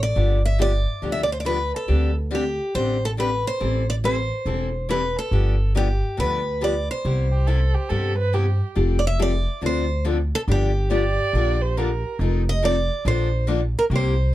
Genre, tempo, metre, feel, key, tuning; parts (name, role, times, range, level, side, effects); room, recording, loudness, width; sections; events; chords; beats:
acoustic string swing (jazz manouche); 140 BPM; 4/4; swing 65% on 8ths; C major, F major from 8.8 s; A4 = 439 Hz
picked steel-string acoustic guitar; melody; 0.0-14.3 s; G4 to E5; -25 LUFS; right 1 dB
upright bass; bass; 0.0-14.3 s; E1 to G2; -22 LUFS; equal
picked steel-string acoustic guitar; accompaniment; 0.2-14.1 s; C3 to A4; -26 LUFS; left 5 dB
warm violin; second line; 7.3-12.3 s; G4 to D5; -27 LUFS; right 4 dB
little or no reverb; dark, warm production; -20 LUFS; side -15 dB against mid
0.0-8.8 A section; 8.8-14.3 B section
0.2 G7; 1.9 D7sus4; 3.6 Am7; 5.3 G7; 7.0 Cmaj7; 8.8 Fadd9; 9.6 Dm7; 10.5 G7; 11.3 Bbmaj7; 12.2 F7; 13.1 Bbmaj7
| 0.16 0.59 1.02 1.45 | 1.88 2.31 2.74 3.17 | 3.60 4.03 4.46 4.89 | 5.32 5.75 6.18 6.61 | 7.04 7.47 7.90 8.33 | 8.76 9.19 9.62 10.05 | 10.48 10.91 11.34 11.77 | 12.20 12.62 13.05 13.48 | 13.91 14.34